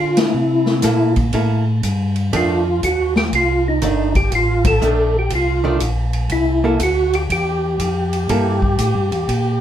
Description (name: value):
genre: soul jazz organ trio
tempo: 121 BPM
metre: 4/4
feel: swing 66% on 8ths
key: C mixolydian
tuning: A4 = 440 Hz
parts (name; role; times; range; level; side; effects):
- percussive tonewheel organ; melody; 0.0-9.6 s; Eb4 to A4; -18 LUFS; equal; slow rotary speaker, chorus vibrato
- mellow tonewheel organ; bass; 0.0-9.6 s; G1 to D3; -20 LUFS; equal; slow rotary speaker
- swinging big-band drum kit; drums; 0.2-9.4 s; hi-hat, kick drum, ride cymbal, snare drum; -23 LUFS; equal; none
- archtop guitar, miked and amplified; accompaniment; 0.8-8.6 s; Eb3 to A4; -21 LUFS; right 2 dB; none
room: wet club reverb, RT60 0.6 s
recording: heard from further back in the room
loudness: -15 LUFS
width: side -10 dB against mid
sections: 0.0-9.6 A section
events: band accent 0.1, 4.6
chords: 0.3 C6; 2.3 F13; 6.3 C13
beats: | 0.34 0.84 1.34 1.83 | 2.33 2.83 3.32 3.82 | 4.32 4.81 5.31 5.80 | 6.30 6.80 7.29 7.79 | 8.29 8.79 9.28